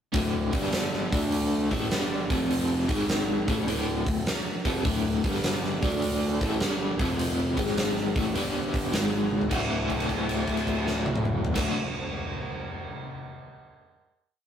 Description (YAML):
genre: blues rock power trio and southern rock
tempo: 103 BPM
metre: 4/4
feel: swing 66% on 8ths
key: unclear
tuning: A4 = 435 Hz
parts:
  - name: overdriven electric guitar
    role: riff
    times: 0.1-11.8 s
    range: D2 to F#4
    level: -27 LUFS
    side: left 1 dB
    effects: tremolo
  - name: fuzz fingered electric bass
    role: bass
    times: 0.1-11.8 s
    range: D1 to D2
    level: -33 LUFS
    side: equal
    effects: overdrive
  - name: huge arena drum kit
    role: drums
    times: 0.1-11.7 s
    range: crash cymbal, hi-hat, kick drum, snare drum, toms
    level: -29 LUFS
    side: equal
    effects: none
room: moderate studio reverb, RT60 0.6 s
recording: rough rehearsal-room recording, tube saturation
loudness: -24 LUFS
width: side -9 dB against mid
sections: 0.1-9.5 riff; 9.5-11.8 final chord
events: drum fill 9.2; held note 9.5-11.5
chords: 0.1 D5; 0.4 G5; 1.0 D5; 2.2 F5; 2.8 G#5; 3.4 D5; 5.1 G5; 5.7 D5; 6.9 F5; 7.5 G#5; 8.1 A5; 8.3 G5; 8.9 G#5; 9.5 D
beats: | 0.14 0.73 1.32 1.91 | 2.50 3.09 3.67 4.26 | 4.85 5.43 6.01 6.60 | 7.18 7.76 8.35 8.93 | 9.51 10.09 10.67 11.25